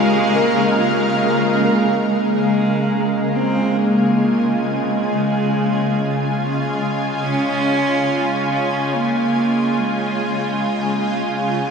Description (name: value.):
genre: ambient.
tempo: free time.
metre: none.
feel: none.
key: Db major.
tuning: A4 = 441 Hz.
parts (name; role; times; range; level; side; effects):
rich cello; melody; 0.0-11.5 s; Ab3 to Db4; -20 LUFS; equal; ping-pong delay.
shimmering ambient pad; sustained chords; 0.0-11.7 s; Db3 to Ab5; -18 LUFS; equal; chorus, built-in reverb.
mellow tine electric piano; arpeggios; 0.0-2.1 s; F4 to Bb4; -26 LUFS; left 1 dB; medium stereo tremolo, ping-pong delay.
room: wet huge ambient reverb, RT60 8.4 s.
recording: none.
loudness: -16 LUFS.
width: side -6 dB against mid.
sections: 0.0-2.1 A section; 2.1-11.7 B section.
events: none.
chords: 0.0 Db5; 2.1 Db.